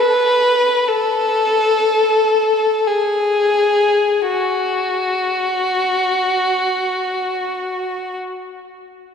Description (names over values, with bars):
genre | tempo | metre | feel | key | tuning
classical, free, expressive piece for unaccompanied violin | free time | none | none | F# minor | A4 = 440 Hz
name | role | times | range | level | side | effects
rich violin | solo | 0.0-8.2 s | F#4 to B4 | -15 LUFS | left 1 dB | none
room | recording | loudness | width
wet cathedral reverb, RT60 4.3 s | heard from further back in the room | -15 LUFS | side -6 dB against mid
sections
0.0-4.3 A section; 4.3-7.4 B section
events
slowing down 0.0-4.3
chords
none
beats
free time